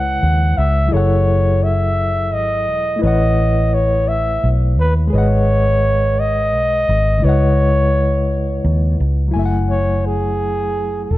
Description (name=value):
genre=slow six-eight R&B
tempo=57 BPM (dotted quarters)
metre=6/8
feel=straight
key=unclear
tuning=A4 = 440 Hz
part: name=breathy flugelhorn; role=melody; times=0.0-11.2 s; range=G#4 to F#5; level=-19 LUFS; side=equal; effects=digital delay
part: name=reed electric piano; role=accompaniment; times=0.0-11.2 s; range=C#3 to G#5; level=-22 LUFS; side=left 3 dB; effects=overdrive, fast tremolo
part: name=vintage muted fingered electric bass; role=bass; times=0.0-11.2 s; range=E1 to D#2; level=-16 LUFS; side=equal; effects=none
room=light reverb, small room ambience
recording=none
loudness=-14 LUFS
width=side -16 dB against mid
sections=0.0-9.3 A section; 9.3-11.2 B section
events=none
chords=0.0 C#m11; 0.9 F#m9; 3.0 A69; 5.1 G#m7; 7.2 C#m11; 9.3 F#m9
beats=| 0.91 1.96 | 3.01 4.07 | 5.12 6.17 | 7.22 8.28 | 9.33 10.38